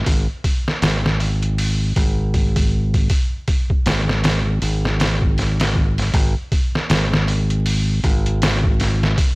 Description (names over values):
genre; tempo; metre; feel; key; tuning
trip hop; 79 BPM; 4/4; swing 58% on 16ths; unclear; A4 = 440 Hz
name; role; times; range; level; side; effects
modern bright fingered electric bass; bass; 0.0-9.1 s; G#1; -19 LUFS; equal; none
trip hop sampler-style drum kit; drums; 0.1-9.3 s; hi-hat, kick drum, snare drum; -18 LUFS; equal; studio ambience
room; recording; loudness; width
digital ambience; dry, gritty hardware recording, transformer saturation, vinyl crackle; -16 LUFS; side -25 dB against mid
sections
0.0-6.1 A section; 6.1-9.3 B section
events
none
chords
none